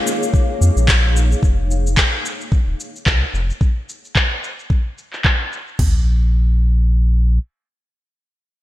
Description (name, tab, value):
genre	organic downtempo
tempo	110 BPM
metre	4/4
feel	swing 57% on 16ths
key	unclear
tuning	A4 = 440 Hz
part	granular cloud pad	sustained chords	0.0-1.4 s	Bb3 to F5	-25 LUFS	left 2 dB	built-in reverb, lush chorus, sidechain pumping
part	electronic shaker and handclaps	drums	0.1-5.8 s	none	-20 LUFS	equal	overdrive, low-pass filter on hats, low-pass filter on perc, low-pass filter on snare, low-pass filter on room, gated reverb
part	afro-pop drum kit	drums	0.3-5.9 s	crash cymbal, kick drum, toms	-16 LUFS	equal	none
part	warm sub bass	bass	0.6-7.4 s	Eb1 to F2	-15 LUFS	equal	sidechain pumping
room	little or no reverb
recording	bright 1980s-style digital production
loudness	-15 LUFS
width	side -15 dB against mid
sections	0.0-5.8 A section; 5.8-8.6 B section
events	none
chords	0.0 Bbm7; 1.4 F5; 5.8 N.C.